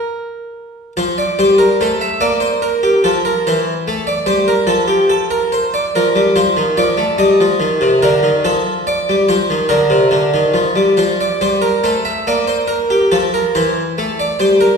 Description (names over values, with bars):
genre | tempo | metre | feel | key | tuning
classical, baroque-style two-part invention for harpsichord | 48 BPM (dotted quarters) | 6/8 | straight | Bb major | A4 = 440 Hz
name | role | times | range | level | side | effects
harpsichord | solo | 0.0-14.8 s | C3 to E5 | -12 LUFS | equal | none
room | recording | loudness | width
wet recital hall reverb, RT60 1.4 s | recorded in a church or concert hall | -12 LUFS | side -5 dB against mid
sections
0.0-14.8 A section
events
none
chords
0.0 N.C.; 1.0 F; 2.2 Bb; 3.5 C7/E; 4.7 F; 6.0 Bb/F; 7.2 Eb; 8.5 F7; 9.7 Bb; 11.0 F; 12.3 Bb; 13.5 C7/E